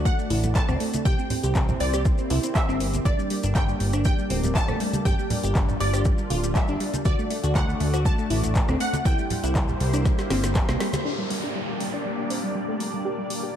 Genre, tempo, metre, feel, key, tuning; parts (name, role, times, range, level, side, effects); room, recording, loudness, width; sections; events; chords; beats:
progressive house; 120 BPM; 4/4; straight; G dorian; A4 = 438 Hz
wide unison pluck; melody; 0.0-10.5 s; D5 to A5; -32 LUFS; equal; phaser, ping-pong delay
lush unison pad; sustained chords; 0.0-13.6 s; A3 to D5; -32 LUFS; equal; chorus, phaser, sidechain pumping
glassy wavetable pluck; arpeggios; 0.0-13.5 s; G3 to G4; -29 LUFS; equal; chorus, sidechain pumping, digital delay
plucky analog bass; bass; 0.0-10.8 s; D1 to D2; -26 LUFS; equal; sidechain pumping
deep house drum kit; drums; 0.1-13.4 s; handclaps, hi-hat, rim click, snare drum; -32 LUFS; equal; sidechain pumping on hats, sidechain pumping on cymbals
electronic kick drum; drums; 0.1-10.7 s; -23 LUFS; equal
maracas; percussion; 0.1-11.0 s; -39 LUFS; left 5 dB
congas; percussion; 0.3-11.0 s; -32 LUFS; right 2 dB; sidechain pumping on perc
downlifter; sound effects; 11.1-13.6 s; -33 LUFS; equal
light reverb; dark, warm production; -21 LUFS; side -10 dB against mid
0.0-11.1 A section; 11.1-13.6 B section
filter sweep on analog synth pad 0.0-11.1; drum fill 10.1-11.1; band accent 10.9; filter sweep on synth arpeggio sound 11.1-13.6
0.0 D; 1.1 C7; 3.1 Gm; 7.1 D; 9.1 C7; 11.1 Gm
0.05 0.55 | 1.05 1.55 2.05 2.55 | 3.05 3.55 4.05 4.55 | 5.05 5.55 6.05 6.55 | 7.05 7.55 8.05 8.55 | 9.05 9.55 10.05 10.55 | 11.05 11.55 12.05 12.55 | 13.05 13.55